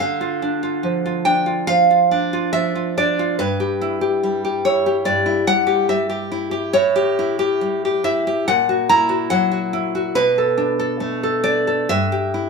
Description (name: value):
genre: romantic piece for solo classical guitar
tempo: 71 BPM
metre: 4/4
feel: rubato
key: D minor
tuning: A4 = 441 Hz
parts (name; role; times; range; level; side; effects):
- nylon-string guitar; solo; 0.0-12.5 s; G2 to A#5; -16 LUFS; equal; none
room: light reverb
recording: band playing live in one room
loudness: -16 LUFS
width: side -4 dB against mid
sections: 0.0-12.5 A section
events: none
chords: 0.0 Dm; 3.4 Em/G; 6.7 A7; 8.5 F#7/A#; 10.2 Bm7; 11.9 Em/G